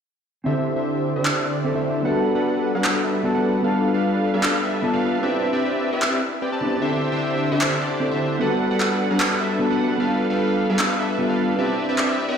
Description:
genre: future bass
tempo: 151 BPM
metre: 4/4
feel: half-time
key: G major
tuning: A4 = 440 Hz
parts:
  - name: mellow electric guitar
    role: accompaniment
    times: 0.4-12.4 s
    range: B3 to B4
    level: -24 LUFS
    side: left 1 dB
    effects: analog chorus, low-pass filter, tape echo
  - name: big bright polysynth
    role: riff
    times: 0.5-12.4 s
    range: D3 to A5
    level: -21 LUFS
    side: equal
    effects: tape echo
  - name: electronic handclaps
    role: drums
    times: 1.3-12.1 s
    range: none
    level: -26 LUFS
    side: right 1 dB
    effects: none
room: light reverb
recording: played on a big sound system in a bare room, stone room reverb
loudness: -19 LUFS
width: side -7 dB against mid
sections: 0.5-12.4 A section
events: filter sweep on analog polysynth 0.5-12.4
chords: 0.5 D7sus4; 2.0 Gmaj7; 3.6 G7; 5.2 Cmaj9; 6.8 D7sus4; 8.4 Gmaj7; 10.0 G7; 11.6 Cmaj9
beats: | 0.46 0.86 1.25 1.65 | 2.05 2.45 2.84 3.24 | 3.64 4.04 4.43 4.83 | 5.23 5.62 6.02 6.42 | 6.82 7.21 7.61 8.01 | 8.41 8.80 9.20 9.60 | 10.00 10.39 10.79 11.19 | 11.59 11.98

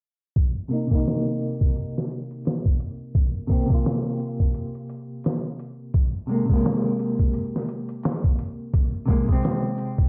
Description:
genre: trip hop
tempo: 86 BPM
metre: 4/4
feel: swing 58% on 16ths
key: C minor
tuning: A4 = 437 Hz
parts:
  - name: trip hop sampler-style drum kit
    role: drums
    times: 0.4-10.1 s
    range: hi-hat, kick drum, snare drum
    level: -25 LUFS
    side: equal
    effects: low-pass filter on hats, low-pass filter on kick, low-pass filter on snare, low-pass filter on room
  - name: semi-hollow electric guitar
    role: accompaniment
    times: 0.7-10.1 s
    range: C3 to F4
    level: -29 LUFS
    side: equal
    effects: tremolo, vintage 12-bit sampler grit, tape echo
  - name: egg shaker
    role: percussion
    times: 1.1-9.6 s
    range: none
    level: barely audible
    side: none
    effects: none
room: little or no reverb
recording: dry, gritty hardware recording, transformer saturation, low-pass filter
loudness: -24 LUFS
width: mono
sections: 0.4-10.1 A section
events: filter sweep 0.4-10.1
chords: 0.4 Cm7; 5.9 Abadd9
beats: | 0.36 1.05 1.75 2.45 | 3.15 3.85 4.54 5.24 | 5.94 6.64 7.33 8.03 | 8.73 9.43

